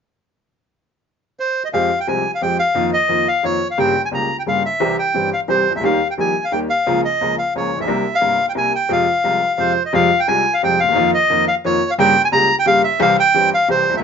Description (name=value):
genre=tango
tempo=176 BPM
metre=3/4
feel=rubato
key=F minor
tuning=A4 = 441 Hz
part: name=bandoneon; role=melody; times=1.4-14.0 s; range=C5 to Bb5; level=-16 LUFS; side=equal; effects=none
part: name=bright upright piano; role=accompaniment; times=1.7-14.0 s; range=G1 to G4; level=-19 LUFS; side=left 1 dB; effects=none
room=moderate studio reverb, RT60 0.5 s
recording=band playing live in one room, nothing above 7.5 kHz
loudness=-14 LUFS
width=side -6 dB against mid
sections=0.7-1.7 A section; 1.7-9.9 B section; 9.9-14.0 B section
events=none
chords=0.7 N.C.; 1.7 Fmadd9; 2.8 Bbsus4/F; 3.8 Gdim; 4.8 C; 5.8 Eb; 6.9 Bbm/Db; 7.9 C7; 8.9 Fm; 9.9 Fmadd9; 11.0 Bbsus4/F; 12.0 Gdim; 13.0 C